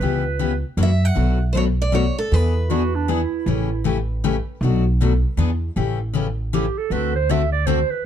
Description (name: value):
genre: acoustic string swing (jazz manouche)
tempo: 157 BPM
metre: 3/4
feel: swing 62% on 8ths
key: A mixolydian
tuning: A4 = 440 Hz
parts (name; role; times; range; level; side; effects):
- breathy clarinet; second line; 0.0-0.6, 2.7-3.9, 6.5-8.1 s; D4 to E5; -24 LUFS; right 9 dB; none
- picked steel-string acoustic guitar; accompaniment; 0.0-7.8 s; B2 to A4; -23 LUFS; left 7 dB; none
- upright bass; bass; 0.0-7.8 s; A1 to F#2; -20 LUFS; right 1 dB; none
- picked steel-string acoustic guitar; melody; 0.8-5.4 s; A4 to F#5; -27 LUFS; right 3 dB; none
room: light reverb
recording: dark, warm production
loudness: -18 LUFS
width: side -9 dB against mid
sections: 0.0-5.8 A section; 5.8-8.1 B section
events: clarinet solo 5.8-8.1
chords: 0.0 C#m7b5; 0.8 F#aug7; 1.2 Bm7; 2.3 E7; 3.5 A7; 4.6 Bm7; 5.4 E7; 5.8 A7; 6.9 D7